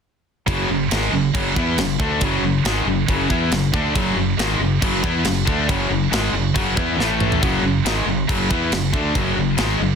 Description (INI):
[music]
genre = heavy metal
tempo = 138 BPM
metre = 4/4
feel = straight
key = F# minor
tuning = A4 = 442 Hz
[part]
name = distorted electric guitar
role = riff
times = 0.5-10.0 s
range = F#2 to E4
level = -24 LUFS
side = equal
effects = distortion
[part]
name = scooped high-gain guitar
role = riff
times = 0.5-10.0 s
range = F#2 to E4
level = -24 LUFS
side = right 11 dB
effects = distortion
[part]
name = tight distorted guitar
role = riff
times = 0.5-10.0 s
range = F#2 to E4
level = -23 LUFS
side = left 11 dB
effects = distortion
[part]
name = modern bright fingered electric bass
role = bass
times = 0.5-10.0 s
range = F#1 to E2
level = -25 LUFS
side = equal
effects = none
[part]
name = tight metal drum kit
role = drums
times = 0.5-9.7 s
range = crash cymbal, kick drum, snare drum, toms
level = -24 LUFS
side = right 1 dB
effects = soft clipping on kick
[sound]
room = studio reverb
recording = dense, heavily limited modern master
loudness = -17 LUFS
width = side -6 dB against mid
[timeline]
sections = 0.5-10.0 A section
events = drum fill 7.0-7.4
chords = 0.5 F#m; 7.0 A5; 7.4 F#m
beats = | 0.48 0.91 1.34 1.78 | 2.21 2.65 3.08 3.52 | 3.95 4.39 4.82 5.26 | 5.69 6.12 6.56 6.99 | 7.43 7.86 8.29 8.73 | 9.16 9.60